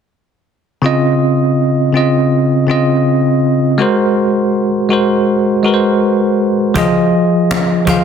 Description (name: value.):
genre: contemporary R&B.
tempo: 81 BPM.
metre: 4/4.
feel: swing 58% on 16ths.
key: Db major.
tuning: A4 = 441 Hz.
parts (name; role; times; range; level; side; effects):
bell-like tine electric piano; accompaniment; 0.8-8.0 s; Db3 to F5; -11 LUFS; equal; fast stereo tremolo.
cajon; drums; 6.8-8.0 s; none; -19 LUFS; left 1 dB; none.
room: light reverb, small room ambience.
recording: dense, heavily limited modern master.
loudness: -11 LUFS.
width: side -7 dB against mid.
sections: 0.8-8.0 A section.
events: none.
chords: 0.8 Dbmaj9; 3.8 Ab9; 6.8 Fm7.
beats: | 0.83 1.57 2.31 3.05 | 3.79 4.53 5.28 6.02 | 6.76 7.50.